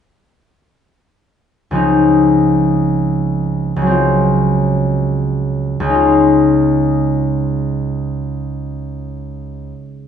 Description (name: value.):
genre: classical, solo harp piece.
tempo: free time.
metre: none.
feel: none.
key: Db major.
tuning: A4 = 439 Hz.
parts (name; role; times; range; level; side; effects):
concert harp; solo; 1.7-9.8 s; Db2 to F4; -13 LUFS; equal; none.
room: light reverb.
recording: nothing above 10.8 kHz.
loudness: -12 LUFS.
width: side -8 dB against mid.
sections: 1.8-10.1 A section.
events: none.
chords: 1.8 Dbmaj9; 4.0 Gb5/Db; 6.0 Dbadd9.